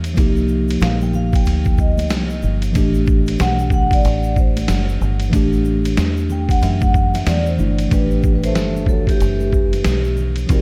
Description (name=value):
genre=hip hop, jazz-hop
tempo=93 BPM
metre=4/4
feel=swing 61% on 16ths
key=unclear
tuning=A4 = 440 Hz
part: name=mellow tine electric piano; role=accompaniment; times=0.0-10.6 s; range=E3 to G4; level=-24 LUFS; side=equal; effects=none
part: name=deep dub fingered electric bass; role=bass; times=0.0-10.6 s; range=F#1 to F#2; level=-22 LUFS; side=equal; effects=none
part: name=trip hop sampler-style drum kit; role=drums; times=0.0-10.6 s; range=hi-hat, kick drum, ride cymbal, snare drum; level=-21 LUFS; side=equal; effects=none
part: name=egg shaker and congas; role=percussion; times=0.0-10.6 s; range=none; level=-36 LUFS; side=equal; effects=none
part: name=vibraphone with soft mallets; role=melody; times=0.8-10.6 s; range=G4 to G5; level=-27 LUFS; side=equal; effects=diffuse ambient delay
part: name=growling trombone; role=second line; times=7.9-10.6 s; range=E3 to A3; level=-32 LUFS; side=equal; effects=none
room=moderate plate reverb, RT60 1.6 s, small room reverb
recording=dreamy mix soaked in reverb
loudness=-17 LUFS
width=mono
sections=0.0-7.9 A section; 7.9-10.6 B section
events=vibraphone solo 0.0-7.9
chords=0.2 Cm9; 2.8 A5; 7.9 Asus2